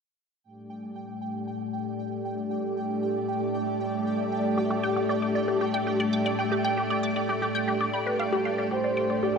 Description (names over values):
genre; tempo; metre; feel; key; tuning
ambient, sequencer-driven space music; 116 BPM; 4/4; straight; unclear; A4 = 438 Hz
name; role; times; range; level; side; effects
string machine, full ensemble; sustained chords; 0.4-9.4 s; A3 to D5; -27 LUFS; equal; phaser, ensemble chorus
pulsing gated texture; texture; 0.4-9.4 s; G5; -36 LUFS; right 5 dB; chorus, built-in reverb
resonant blip pluck; riff; 4.6-9.4 s; G4 to D6; -29 LUFS; equal; phaser, ping-pong delay
breathy flute-like synth lead; melody; 8.7-9.4 s; C5 to D5; -28 LUFS; right 2 dB; tremolo, lush chorus
fat analog bass; bass; 8.7-9.4 s; G1; -60 LUFS; right 1 dB; none
room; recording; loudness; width
wet plate reverb, RT60 2.8 s; cassette tape; -25 LUFS; side -6 dB against mid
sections
0.4-8.7 A section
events
filter sweep on string machine 0.4-8.7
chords
0.4 Gsus2